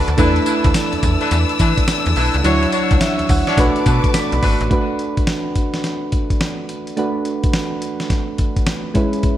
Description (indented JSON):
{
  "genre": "R&B, new jack swing",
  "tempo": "106 BPM",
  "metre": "4/4",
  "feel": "swing 64% on 16ths",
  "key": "B minor",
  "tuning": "A4 = 440 Hz",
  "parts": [
    { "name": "soft electric-piano-like synth keys", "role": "accompaniment", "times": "0.0-9.4 s", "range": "F#3 to B5", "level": "-20 LUFS", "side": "right 2 dB", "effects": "chorus" },
    { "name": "warm studio string section", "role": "sustained chords", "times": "0.0-4.7 s", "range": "B4 to E6", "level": "-24 LUFS", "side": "left 3 dB", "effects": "none" },
    { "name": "warm horn section", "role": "stabs", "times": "0.0-4.6 s", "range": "D4 to C#5", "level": "-23 LUFS", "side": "left 2 dB", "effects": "digital delay" },
    { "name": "slap-like FM bass", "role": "bass", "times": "0.0-4.7 s", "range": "G#1 to E3", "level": "-20 LUFS", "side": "equal", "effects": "none" },
    { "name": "dusty soul sampler-style drum kit", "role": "drums", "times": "0.1-9.4 s", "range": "hi-hat, kick drum, snare drum, tambourine", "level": "-19 LUFS", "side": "equal", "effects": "none" }
  ],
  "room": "moderate concert hall reverb, RT60 2.4 s",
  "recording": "none",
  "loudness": "-15 LUFS",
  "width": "side -12 dB against mid",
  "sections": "0.0-4.7 A section; 4.7-9.4 B section",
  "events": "synth keys fill 3.9-4.7",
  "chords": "0.2 E7sus4; 2.4 Dmaj9; 3.6 Bm7",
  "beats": "| 0.18 0.75 1.31 1.88 | 2.44 3.01 3.58 4.14 | 4.71 5.28 5.84 6.41 | 6.97 7.54 8.11 8.67 | 9.24"
}